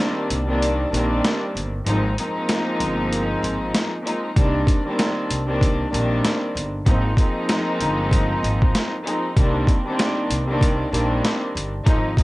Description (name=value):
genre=hip hop, boom-bap hip-hop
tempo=96 BPM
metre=4/4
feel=swing 61% on 16ths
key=C minor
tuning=A4 = 440 Hz
part: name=warm studio string section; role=accompaniment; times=0.0-12.2 s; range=Eb3 to Eb4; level=-22 LUFS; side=equal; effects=cassette tape, high-pass filter, low-pass filter
part: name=upright bass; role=bass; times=0.3-12.1 s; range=G1 to C2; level=-25 LUFS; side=equal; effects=none
part: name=boom bap sampler-style drum kit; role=drums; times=0.3-12.2 s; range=hi-hat, kick drum, snare drum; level=-20 LUFS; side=equal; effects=cassette tape
room=little or no reverb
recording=home recording on cassette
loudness=-19 LUFS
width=side -19 dB against mid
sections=0.0-12.2 A section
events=break 0.0-4.4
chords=0.0 Cm9; 1.9 Ab69; 4.4 Cm9; 6.9 Ab69; 9.4 Cm9